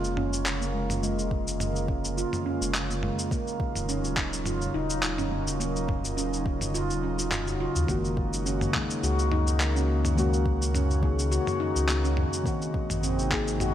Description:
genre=organic downtempo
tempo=105 BPM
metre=4/4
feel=swing 55% on 16ths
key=unclear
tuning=A4 = 444 Hz
part: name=airy breathy pad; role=sustained chords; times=0.0-13.7 s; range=C3 to Gb4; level=-33 LUFS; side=equal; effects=chorus, sidechain pumping
part: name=handpan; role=arpeggios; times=0.0-13.7 s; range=Ab3 to Gb4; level=-31 LUFS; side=right 1 dB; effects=vintage 12-bit sampler grit, low-pass filter, tape echo
part: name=warm sub bass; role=bass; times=0.0-13.7 s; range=Eb1 to Eb2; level=-29 LUFS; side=equal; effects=sidechain pumping
part: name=dusty soul sampler-style drum kit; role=drums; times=0.0-13.7 s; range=handclaps, shaker, toms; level=-31 LUFS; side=equal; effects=overdrive
part: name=electronic kick drum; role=drums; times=1.3-13.4 s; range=none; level=-31 LUFS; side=equal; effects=none
part: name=muted felt-like synth keys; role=accompaniment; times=7.9-13.7 s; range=Eb3 to Ab4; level=-32 LUFS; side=left 2 dB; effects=chorus, sidechain pumping, tape echo
room=light reverb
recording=none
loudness=-25 LUFS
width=side -11 dB against mid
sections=0.0-13.7 A section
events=filter sweep on handpan 0.0-13.7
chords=0.0 Bbm7; 3.3 Ebm9; 7.9 Gb6; 12.5 Ab7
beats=0.46 | 1.03 1.60 2.17 2.74 | 3.31 3.89 4.46 5.03 | 5.60 6.17 6.74 7.32 | 7.89 8.46 9.03 9.60 | 10.17 10.74 11.31 11.89 | 12.46 13.03 13.60

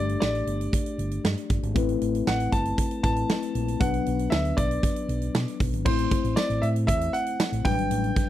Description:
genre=1980s-style pop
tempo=117 BPM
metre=4/4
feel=straight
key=A dorian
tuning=A4 = 440 Hz
part: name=bright concert grand piano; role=melody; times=0.0-8.3 s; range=C5 to A5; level=-30 LUFS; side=equal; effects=slapback echo
part: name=mellow tine electric piano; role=accompaniment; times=0.0-8.3 s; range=F#3 to D5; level=-29 LUFS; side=moving between left 9 dB and left 1 dB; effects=auto-pan
part: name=fingered electric bass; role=bass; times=0.0-8.1 s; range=G1 to B2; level=-28 LUFS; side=right 1 dB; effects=none
part: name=huge arena drum kit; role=drums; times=0.1-8.3 s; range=crash cymbal, hi-hat, kick drum, snare drum, tambourine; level=-27 LUFS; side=right 1 dB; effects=none
room=little or no reverb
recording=dry, close 1970s-style studio recording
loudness=-23 LUFS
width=side -12 dB against mid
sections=0.0-5.9 A section; 5.9-8.3 B section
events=none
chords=0.0 Gsus2; 1.8 Amadd9; 3.8 Bm; 5.9 Am; 7.7 Gmaj7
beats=0.22 0.73 1.24 | 1.76 2.27 2.78 3.29 | 3.81 4.32 4.83 5.35 | 5.86 6.37 6.88 7.40 | 7.91

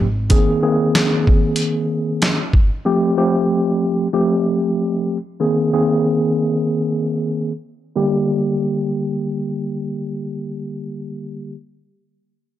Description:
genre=hip hop, boom-bap hip-hop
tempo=94 BPM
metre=4/4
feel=swing 54% on 16ths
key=G phrygian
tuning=A4 = 442 Hz
part: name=mellow tine electric piano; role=accompaniment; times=0.0-11.5 s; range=D3 to Ab4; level=-17 LUFS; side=equal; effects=medium stereo tremolo, cassette tape, high-pass filter, low-pass filter
part: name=boom bap sampler-style drum kit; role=drums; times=0.3-2.7 s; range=hi-hat, kick drum, snare drum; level=-16 LUFS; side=equal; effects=none
room=little or no reverb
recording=dry, gritty hardware recording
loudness=-16 LUFS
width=side -12 dB against mid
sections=0.0-8.0 A section; 8.0-10.5 B section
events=filter sweep on tine electric piano 0.0-8.0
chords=0.3 Bb9sus4; 2.9 G9sus4; 5.4 Bb9sus4; 8.0 Gm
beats=| 0.30 0.94 1.58 2.22 | 2.85 3.49 4.13 4.77 | 5.41 6.05 6.68 7.32 | 7.96 8.60 9.24 9.88

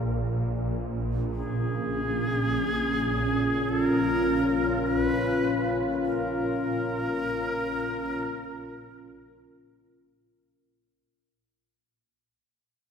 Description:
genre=dark ambient drone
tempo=free time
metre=none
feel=none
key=Bb minor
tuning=A4 = 438 Hz
part: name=breathy bright shakuhachi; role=melody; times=0.0-9.5 s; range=Ab4 to Cb5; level=-31 LUFS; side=right 1 dB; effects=tape echo
part: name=swarming drone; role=drone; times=0.0-10.9 s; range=Bb1 to Bb2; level=-30 LUFS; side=right 1 dB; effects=built-in reverb, wide subtle chorus
part: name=bronze singing bowl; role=texture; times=0.0-10.8 s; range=none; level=barely audible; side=none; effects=none
part: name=dark analog pad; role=sustained chords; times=1.4-10.8 s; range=Db4 to Bb4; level=-27 LUFS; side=left 2 dB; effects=chorus
room=wet lush hall reverb, RT60 2.5 s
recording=dreamy mix soaked in reverb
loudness=-24 LUFS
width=side -7 dB against mid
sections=0.0-10.8 A section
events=fade-out 4.5-10.8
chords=0.0 Bbm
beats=free time

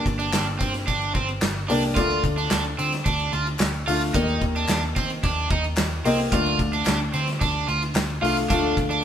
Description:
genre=piano-driven pop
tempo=110 BPM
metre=4/4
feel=straight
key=unclear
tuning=A4 = 441 Hz
part: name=dark upright piano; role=accompaniment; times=0.0-9.0 s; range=G2 to F5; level=-26 LUFS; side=left 2 dB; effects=none
part: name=cranked stack guitar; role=riff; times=0.0-9.0 s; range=C4 to F4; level=-26 LUFS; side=right 3 dB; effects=overdrive
part: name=vintage muted picked electric bass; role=bass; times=0.1-9.0 s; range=G1 to Eb3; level=-28 LUFS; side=equal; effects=none
part: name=loose indie drum kit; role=drums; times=0.1-9.0 s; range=handclaps, hi-hat, kick drum, ride cymbal, snare drum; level=-26 LUFS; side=equal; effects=none
part: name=group handclap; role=percussion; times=0.3-8.1 s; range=none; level=-38 LUFS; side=left 3 dB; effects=none
room=moderate stone room reverb, RT60 1.3 s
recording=band playing live in one room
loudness=-20 LUFS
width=side -9 dB against mid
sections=0.0-9.0 A section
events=none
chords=0.0 Gm; 2.0 Dm; 4.1 Eb; 6.3 Dm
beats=0.33 0.88 1.42 | 1.97 2.51 3.06 3.60 | 4.14 4.69 5.23 5.78 | 6.32 6.87 7.41 7.96 | 8.50

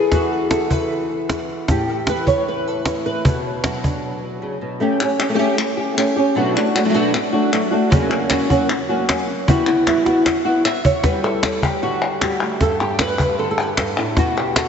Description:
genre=flamenco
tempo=154 BPM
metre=4/4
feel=straight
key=unclear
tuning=A4 = 440 Hz
part: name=flamenco guitar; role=melody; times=0.0-14.7 s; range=F#2 to E5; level=-18 LUFS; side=equal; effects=analog chorus, tape echo
part: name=cajon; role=percussion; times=0.1-4.0, 7.9-14.7 s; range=none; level=-21 LUFS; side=equal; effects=none
part: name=palmas hand claps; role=percussion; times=5.0-14.7 s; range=none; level=-24 LUFS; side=left 4 dB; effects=none
room=wet lush hall reverb, RT60 3.1 s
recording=dreamy mix soaked in reverb, nothing above 7.9 kHz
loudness=-16 LUFS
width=side -7 dB against mid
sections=0.0-4.8 A section; 4.8-11.0 B section; 11.0-14.7 C section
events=break 4.0-4.8; drum fill 9.9-11.0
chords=0.0 N.C.; 1.7 A5; 3.2 Bm; 4.8 A7; 6.4 Bm7; 7.9 F#; 9.5 Emadd9; 11.0 Gsus2; 14.2 B5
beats=| 0.13 0.52 0.91 1.30 | 1.69 2.08 2.47 2.86 | 3.25 3.64 4.03 4.42 | 4.81 5.20 5.58 5.97 | 6.36 6.75 7.14 7.53 | 7.92 8.31 8.70 9.09 | 9.48 9.87 10.26 10.65 | 11.04 11.43 11.82 12.21 | 12.60 12.99 13.38 13.78 | 14.17 14.56

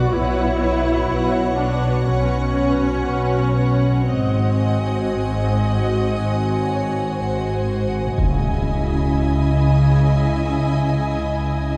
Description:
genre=cinematic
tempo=58-62 BPM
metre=4/4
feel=straight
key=C# minor from 8.2 s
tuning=A4 = 442 Hz
part: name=muted studio violin section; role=melody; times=0.0-11.8 s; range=F#5 to G#5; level=-36 LUFS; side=equal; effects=none
part: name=muted studio violin section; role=second line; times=0.0-11.8 s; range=B4 to D#5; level=-30 LUFS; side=equal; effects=none
part: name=muted studio viola section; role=accompaniment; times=0.0-11.8 s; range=B#3 to F#4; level=-28 LUFS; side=equal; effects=none
part: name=soft additive organ-like pad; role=sustained chords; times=0.0-11.8 s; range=E4 to G#5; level=-29 LUFS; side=equal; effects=ensemble chorus, built-in reverb
part: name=muted studio cello section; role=bass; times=0.1-11.8 s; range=G#2 to C#3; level=-24 LUFS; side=equal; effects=none
part: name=muted studio double bass section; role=bass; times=0.1-11.8 s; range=G#1 to C#2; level=-25 LUFS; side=equal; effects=none
part: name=impact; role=sound effects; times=8.2-11.8 s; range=none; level=-27 LUFS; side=equal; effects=none
room=moderate recital hall reverb, RT60 1.6 s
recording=dark, warm production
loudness=-19 LUFS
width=mono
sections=0.0-8.2 A section; 8.2-11.8 B section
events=impact 8.2-11.8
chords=0.1 F#sus4/B; 4.1 G#7; 8.2 C#madd9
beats=| 0.12 1.09 2.07 3.06 | 4.09 5.13 6.16 7.18 | 8.18 9.17 10.14 11.12

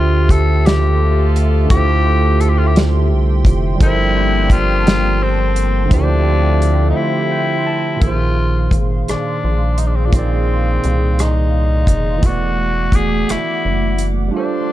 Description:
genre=slow six-eight R&B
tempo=57 BPM (dotted quarters)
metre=6/8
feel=straight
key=unclear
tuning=A4 = 438 Hz
part: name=breathy tenor saxophone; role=melody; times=0.0-14.7 s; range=C4 to A4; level=-20 LUFS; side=left 3 dB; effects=slapback echo
part: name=overdriven tine electric piano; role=accompaniment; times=0.0-14.7 s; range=Bb2 to A5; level=-20 LUFS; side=right 5 dB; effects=none
part: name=hollow soft pad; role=sustained chords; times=0.0-14.7 s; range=G3 to D6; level=-26 LUFS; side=left 1 dB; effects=ensemble chorus
part: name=rubbery square bass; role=bass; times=0.0-14.3 s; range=E1 to D2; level=-16 LUFS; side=equal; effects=none
part: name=warm soul drum kit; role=drums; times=0.3-14.1 s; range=hi-hat, kick drum, rim click, snare drum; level=-15 LUFS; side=equal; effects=none
part: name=mellow horn section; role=stabs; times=0.7-7.6 s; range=F3 to A4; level=-25 LUFS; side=left 4 dB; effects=none
room=small room ambience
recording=dark, warm production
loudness=-13 LUFS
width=side -14 dB against mid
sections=0.0-8.0 A section; 8.0-14.7 B section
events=break 7.0-8.0; tine electric piano fill 7.0-8.0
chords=0.0 Dm11; 3.8 Gm11; 5.9 Dm11; 8.0 Bb9sus4; 12.2 E9sus4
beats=0.65 | 1.71 2.76 | 3.81 4.86 | 5.92 6.97 | 8.02 9.07 | 10.13 11.18 | 12.23 13.28 | 14.34

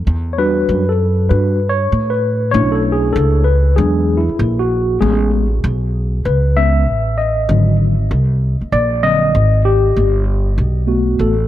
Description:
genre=hip hop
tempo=97 BPM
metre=4/4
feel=swing 65% on 16ths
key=unclear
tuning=A4 = 440 Hz
part: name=upright bass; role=bass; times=0.0-11.5 s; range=G1 to A2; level=-15 LUFS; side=equal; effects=none
part: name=tine electric piano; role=accompaniment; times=0.3-11.5 s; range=D3 to E5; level=-16 LUFS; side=left 1 dB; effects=medium stereo tremolo
room=light reverb, small room reverb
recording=none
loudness=-13 LUFS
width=side -13 dB against mid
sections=0.1-11.5 A section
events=tine electric piano solo 0.1-11.5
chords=0.1 Em7; 2.5 Bm11; 3.8 E9; 5.0 Amaj9; 7.5 G#7#11; 10.0 Gmaj9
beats=| 0.07 0.69 1.30 1.92 | 2.54 3.16 3.78 4.40 | 5.01 5.63 6.25 6.87 | 7.49 8.11 8.73 9.35 | 9.96 10.58 11.20

